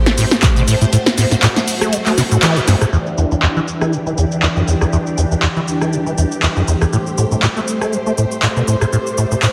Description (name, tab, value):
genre	acid house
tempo	120 BPM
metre	4/4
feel	swing 55% on 16ths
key	E minor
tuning	A4 = 439 Hz
part	string machine, full ensemble	sustained chords	0.0-9.5 s	E3 to C5	-23 LUFS	equal	phaser, ensemble chorus, sidechain pumping
part	acid bass, saw	riff	0.1-9.5 s	E2 to A3	-19 LUFS	equal	tube saturation, ensemble chorus, cassette tape
part	punchy analog drum machine	drums	0.1-9.5 s	handclaps, hi-hat, rim click, shaker, snare drum	-21 LUFS	equal	overdrive, low-pass filter on hats, low-pass filter on perc, low-pass filter on snare, low-pass filter on room
part	electronic kick drum	drums	0.4-0.5 s	none	-18 LUFS	equal	none
room	moderate plate reverb, RT60 1.5 s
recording	heavily compressed radio sound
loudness	-16 LUFS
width	mono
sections	0.0-2.9 A section; 2.9-9.5 B section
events	drop 0.0-2.9; kick drops out 0.9-2.9; band accent 2.4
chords	0.0 Am7; 2.9 Em7; 6.9 Am7